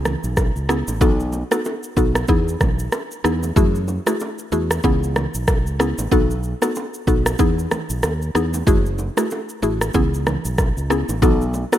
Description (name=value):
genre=afrobeats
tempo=94 BPM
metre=4/4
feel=swing 58% on 16ths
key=F# dorian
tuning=A4 = 436 Hz
part: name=mallet-like synth pluck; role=accompaniment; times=0.0-11.8 s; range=A3 to A4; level=-22 LUFS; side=left 1 dB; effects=chorus
part: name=fingered electric bass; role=bass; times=0.0-11.6 s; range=F#1 to F#2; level=-22 LUFS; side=equal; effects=none
part: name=afro-pop drum kit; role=drums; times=0.1-11.8 s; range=kick drum, rim click, shaker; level=-21 LUFS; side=equal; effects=none
part: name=bongos and congas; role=percussion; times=0.1-11.8 s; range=none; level=-29 LUFS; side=right 3 dB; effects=none
room=light reverb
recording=rough home demo mix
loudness=-17 LUFS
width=side -12 dB against mid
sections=0.0-11.8 A section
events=none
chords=0.0 C#m7; 1.0 B7; 2.3 Emaj7; 3.6 F#m9; 4.8 C#m7; 6.1 B7; 7.4 Emaj7; 8.7 F#m9; 9.9 C#m7; 11.2 B7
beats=0.37 | 1.01 1.65 2.29 2.93 | 3.56 4.20 4.84 5.48 | 6.12 6.76 7.39 8.03 | 8.67 9.31 9.95 10.59 | 11.22